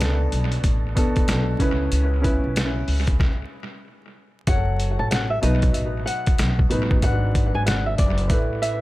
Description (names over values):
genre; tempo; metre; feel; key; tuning
hip hop, boom-bap hip-hop; 94 BPM; 4/4; swing 62% on 16ths; unclear; A4 = 441 Hz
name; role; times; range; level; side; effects
warm upright piano; accompaniment; 0.0-8.8 s; G#2 to C#5; -27 LUFS; equal; cassette tape, high-pass filter, low-pass filter, analog delay
upright bass; bass; 0.0-8.8 s; F#1 to C#2; -23 LUFS; equal; none
trip hop sampler-style drum kit; drums; 0.0-8.8 s; hi-hat, kick drum, snare drum; -22 LUFS; equal; analog delay
flamenco guitar; melody; 4.5-8.8 s; D5 to A5; -27 LUFS; left 1 dB; high-pass filter, low-pass filter, analog delay
room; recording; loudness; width
small room ambience; echo-heavy mix, vinyl crackle; -19 LUFS; side -18 dB against mid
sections
0.0-4.5 A section; 4.5-8.8 B section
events
stop 3.2-4.5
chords
0.0 Bm7; 1.6 C#m7; 4.5 F#m; 5.4 B; 7.0 G#m7b5; 8.3 Asus2